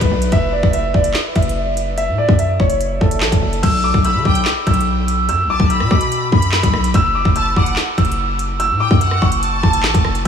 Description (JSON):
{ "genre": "hip hop, drill", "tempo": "145 BPM", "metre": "4/4", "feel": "half-time", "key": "B minor", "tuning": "A4 = 441 Hz", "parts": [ { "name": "dark baby grand piano", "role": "melody", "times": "0.0-10.3 s", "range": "A4 to E6", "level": "-18 LUFS", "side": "left 1 dB", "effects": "analog delay" }, { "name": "hard-hitting 808-style bass", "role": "bass", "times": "0.0-10.3 s", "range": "F#1 to D3", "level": "-19 LUFS", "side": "equal", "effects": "none" }, { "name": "drill drum kit", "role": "drums", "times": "0.0-10.3 s", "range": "crash cymbal, handclaps, hi-hat, kick drum, rim click, snare drum", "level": "-18 LUFS", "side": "equal", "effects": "none" }, { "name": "bright studio violin section", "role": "second line", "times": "4.0-10.2 s", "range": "F#5 to B5", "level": "-25 LUFS", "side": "right 1 dB", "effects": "analog delay" } ], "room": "moderate huge ambient reverb, RT60 7.1 s", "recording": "dreamy mix soaked in reverb, small room ambience", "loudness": "-13 LUFS", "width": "side -7 dB against mid", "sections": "0.0-3.6 A section; 3.6-10.3 B section", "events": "break 0.0-3.6", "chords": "0.3 F#7(no3); 3.6 Bm; 6.9 F#m7", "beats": "| 0.32 0.74 1.15 1.56 | 1.98 2.39 2.81 3.22 | 3.63 4.05 4.46 4.87 | 5.29 5.70 6.12 6.53 | 6.94 7.36 7.77 8.18 | 8.60 9.01 9.43 9.84 | 10.25" }